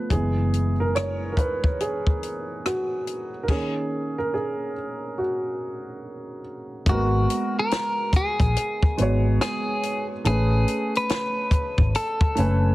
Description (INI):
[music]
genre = R&B, neo-soul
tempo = 71 BPM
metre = 4/4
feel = swing 64% on 16ths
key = G# minor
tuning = A4 = 441 Hz
[part]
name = warm upright piano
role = accompaniment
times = 0.0-12.7 s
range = D#3 to G#5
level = -26 LUFS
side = right 1 dB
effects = none
[part]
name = vintage muted fingered electric bass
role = bass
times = 0.1-12.7 s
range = F#1 to A#1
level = -22 LUFS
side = left 1 dB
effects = none
[part]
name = compact cocktail drum kit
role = drums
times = 0.1-12.6 s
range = crash cymbal, hi-hat, kick drum, rim click, snare drum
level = -23 LUFS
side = left 1 dB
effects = none
[part]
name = clean electric guitar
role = melody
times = 6.9-12.7 s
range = F#4 to B4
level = -26 LUFS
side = left 1 dB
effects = slapback echo
[sound]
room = little or no reverb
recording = heavily compressed radio sound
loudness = -21 LUFS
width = side -17 dB against mid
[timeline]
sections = 0.0-6.9 A section; 6.9-12.7 B section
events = upright piano solo 0.0-6.9; stop 3.5-6.9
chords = 0.1 F#9sus4; 3.5 D#madd11; 6.9 G#m9; 10.2 Amaj9